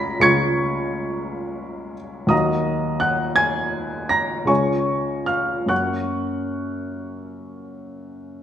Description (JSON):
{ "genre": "classical, romantic nocturne for solo piano", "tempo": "48-60 BPM (dotted quarters)", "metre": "9/8", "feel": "rubato", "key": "F# major", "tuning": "A4 = 441 Hz", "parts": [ { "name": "warm upright piano", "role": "solo", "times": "0.0-8.4 s", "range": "C#2 to C#7", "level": "-20 LUFS", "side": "equal", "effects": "none" } ], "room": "wet recital hall reverb, RT60 1.5 s", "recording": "none", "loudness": "-19 LUFS", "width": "side -10 dB against mid", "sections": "0.0-8.4 A section", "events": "none", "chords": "0.0 C#; 2.3 D#m; 4.5 C#; 5.7 F#" }